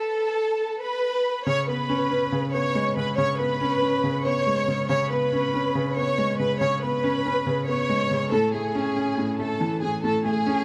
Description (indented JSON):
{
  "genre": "hip hop",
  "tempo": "140 BPM",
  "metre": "4/4",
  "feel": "half-time",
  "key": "C# minor",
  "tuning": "A4 = 440 Hz",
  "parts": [
    { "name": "warm symphonic violin section", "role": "melody", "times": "0.0-10.6 s", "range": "G#4 to C#6", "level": "-27 LUFS", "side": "equal", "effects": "none" },
    { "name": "dark grand piano", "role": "accompaniment", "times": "1.5-10.6 s", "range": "A2 to C#4", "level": "-28 LUFS", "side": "equal", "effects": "none" }
  ],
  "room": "light reverb, studio reverb",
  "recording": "none",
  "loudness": "-24 LUFS",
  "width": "mono",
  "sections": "0.0-1.5 A section; 1.5-10.6 B section",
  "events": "none",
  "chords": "0.0 Asus2; 1.5 C#5; 8.3 A"
}